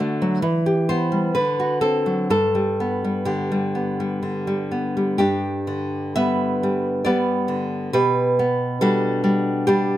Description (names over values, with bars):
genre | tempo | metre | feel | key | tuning
romantic piece for solo classical guitar | 59-70 BPM | 3/4 | rubato | G major | A4 = 441 Hz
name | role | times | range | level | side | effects
nylon-string guitar | solo | 0.0-10.0 s | G2 to E5 | -19 LUFS | equal | none
room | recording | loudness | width
light reverb | close, detailed microphones | -19 LUFS | side -13 dB against mid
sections
0.0-5.2 A section; 5.2-10.0 B section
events
none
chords
0.4 Em; 1.3 D7; 2.3 G; 7.9 G/B